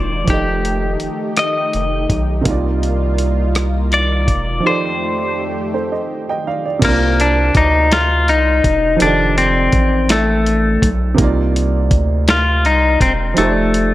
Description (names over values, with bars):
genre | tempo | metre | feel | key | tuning
slow six-eight R&B | 55 BPM (dotted quarters) | 6/8 | straight | C dorian | A4 = 439 Hz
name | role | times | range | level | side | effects
clean electric guitar | melody | 0.0-13.9 s | A3 to Eb5 | -16 LUFS | left 2 dB | spring reverb
warm baby grand piano | accompaniment | 0.0-13.9 s | C3 to G5 | -21 LUFS | right 4 dB | none
lush unison pad | sustained chords | 0.0-6.8 s | F2 to D5 | -24 LUFS | left 1 dB | chorus
round analog bass | bass | 0.0-13.9 s | E1 to D2 | -18 LUFS | equal | none
dusty soul sampler-style drum kit | drums | 0.3-13.9 s | crash cymbal, hi-hat, kick drum, rim click, snare drum | -18 LUFS | equal | none
room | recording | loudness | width
digital ambience | none | -13 LUFS | side -15 dB against mid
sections
0.0-6.8 A section; 6.8-13.9 B section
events
break 4.6-6.8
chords
0.3 F9; 2.5 Cm11; 4.6 F13; 6.8 Cm11; 9.0 F13; 11.2 Cm11; 13.4 F13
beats
| 0.28 1.37 | 2.46 3.55 | 4.64 5.73 | 6.82 7.91 | 9.00 10.09 | 11.19 12.28 | 13.37